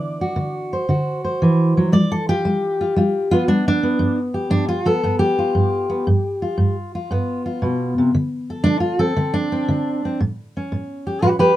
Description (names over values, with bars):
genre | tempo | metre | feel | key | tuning
acoustic country blues, solo or duo | 116 BPM | 4/4 | swing 68% on 8ths | unclear | A4 = 441 Hz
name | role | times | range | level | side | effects
fingerpicked steel-string acoustic guitar | solo | 0.0-11.6 s | G2 to D5 | -17 LUFS | equal | none
room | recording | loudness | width
moderate studio reverb, RT60 0.5 s | minimal, uncompressed stereo recording | -17 LUFS | side -14 dB against mid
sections
0.0-11.6 A section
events
steel-string acoustic guitar solo 0.0-11.6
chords
0.0 D7; 1.9 G7; 8.1 D5; 10.2 A7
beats
0.37 0.89 1.41 | 1.93 2.45 2.97 3.48 | 4.00 4.52 5.04 5.55 | 6.07 6.59 7.10 7.62 | 8.14 8.65 9.17 9.68 | 10.20 10.71 11.22